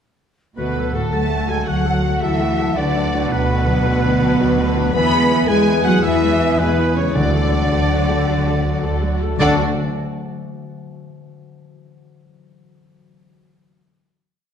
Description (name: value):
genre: cinematic, heroic adventure film score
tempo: 109 BPM (dotted quarters)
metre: 12/8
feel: straight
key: D lydian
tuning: A4 = 440 Hz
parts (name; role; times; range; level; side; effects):
- warm studio violin section; melody; 0.6-9.6 s; A4 to B5; -26 LUFS; left 1 dB; none
- clear oboe; second line; 0.6-9.6 s; A4 to B5; -27 LUFS; right 2 dB; none
- concert flute; second line; 0.6-9.6 s; F#5 to G#5; -28 LUFS; equal; none
- mellow clarinet; second line; 0.6-9.6 s; A4 to B4; -29 LUFS; left 2 dB; none
- warm symphonic violin section; second line; 0.6-9.6 s; A4 to B5; -29 LUFS; left 1 dB; none
- warm symphonic viola section; accompaniment; 0.6-9.6 s; D3 to A4; -26 LUFS; equal; none
- dark French horn section; sustained chords; 0.6-9.6 s; A3 to B4; -23 LUFS; left 3 dB; none
- concert harp; arpeggios; 0.6-9.6 s; D3 to F#5; -25 LUFS; left 5 dB; none
- rich symphonic cello section; bass; 0.6-9.6 s; A2 to D4; -23 LUFS; right 3 dB; none
- warm chamber double bass section; bass; 0.6-9.6 s; D2 to E2; -22 LUFS; right 2 dB; none
- timpani; percussion; 7.2-9.6 s; D3; -25 LUFS; equal; none
room: wet scoring stage reverb, RT60 1.6 s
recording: lossy compression artefacts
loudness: -15 LUFS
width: side -8 dB against mid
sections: 0.6-9.4 theme; 9.4-11.6 final chord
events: none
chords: 0.6 D; 2.8 Bm/D; 5.0 E; 7.2 D